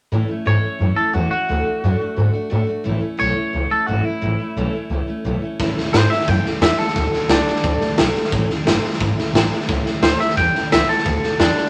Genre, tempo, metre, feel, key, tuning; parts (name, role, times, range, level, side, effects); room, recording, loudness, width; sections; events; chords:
rockabilly; 176 BPM; 4/4; straight; A major; A4 = 440 Hz
picked steel-string acoustic guitar; accompaniment; 0.1-11.7 s; A2 to F#4; -26 LUFS; equal
upright bass; bass; 0.1-11.6 s; F#1 to A2; -23 LUFS; equal
twangy electric guitar; melody; 0.5-8.0, 10.0-11.7 s; D4 to G5; -23 LUFS; equal
raw garage drum kit; drums; 5.6-11.7 s; hi-hat, kick drum, snare drum; -21 LUFS; equal
light reverb; -19 LUFS; mono
0.1-5.6 A section; 5.6-11.7 B section
0.1 A; 1.5 D; 2.9 A; 7.0 D; 8.3 A; 11.0 D